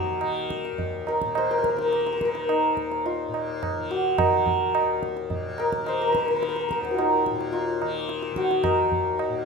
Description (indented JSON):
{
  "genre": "indian classical, Hindustani",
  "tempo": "107 BPM",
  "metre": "4/4",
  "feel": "straight",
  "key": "Eb raga shivaranjani",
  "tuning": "A4 = 440 Hz",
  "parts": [
    { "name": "santur", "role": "melody", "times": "0.0-9.4 s", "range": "Eb4 to C6", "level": "-24 LUFS", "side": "left 1 dB", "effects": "none" },
    { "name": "tanpura", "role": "drone", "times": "0.0-9.4 s", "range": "Eb2 to Eb3", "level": "-34 LUFS", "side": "left 3 dB", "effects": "none" },
    { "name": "tabla", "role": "percussion", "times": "0.2-9.4 s", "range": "none", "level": "-29 LUFS", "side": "right 5 dB", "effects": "none" }
  ],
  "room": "light reverb",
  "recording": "minimal, uncompressed stereo recording, faint mains hum",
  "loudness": "-22 LUFS",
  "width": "side -4 dB against mid",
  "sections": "0.0-9.4 A section",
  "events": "speeding up 0.0-9.4",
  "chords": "none",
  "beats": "0.22 0.79 1.36 | 1.93 2.49 3.06 3.62 | 4.18 4.75 5.31 5.87 | 6.42 6.98 7.53 8.09 | 8.64 9.19"
}